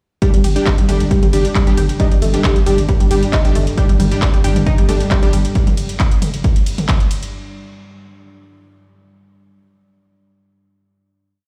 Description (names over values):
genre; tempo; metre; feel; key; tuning
driving peak-time techno; 135 BPM; 4/4; straight; unclear; A4 = 440 Hz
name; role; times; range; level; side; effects
tight sequenced synth; riff; 0.2-5.4 s; G3 to G4; -24 LUFS; equal; chorus, phaser, overdrive, sidechain pumping, tape echo
supersaw stab; stabs; 0.2-5.3 s; G3 to G4; -24 LUFS; equal; cassette tape, sidechain pumping, tape echo
metallic inharmonic drone; drone; 1.5-7.4 s; G2; -29 LUFS; equal; chorus, built-in reverb, phaser, sidechain pumping
electronic kick drum; drums; 0.2-7.0 s; none; -18 LUFS; equal; none
techno drum kit; drums; 0.2-7.3 s; handclaps, hi-hat, ride cymbal, toms; -26 LUFS; equal; sidechain pumping on hats, sidechain pumping on cymbals, sidechain pumping on toms
growling 808-style bass; bass; 0.3-5.4 s; G1; -21 LUFS; equal; overdrive, sidechain pumping, low-pass filter
room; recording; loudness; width
digital ambience; played on a big sound system in a bare room, stone room reverb; -15 LUFS; mono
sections
0.2-7.3 drop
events
drop 0.2-7.3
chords
0.2 G5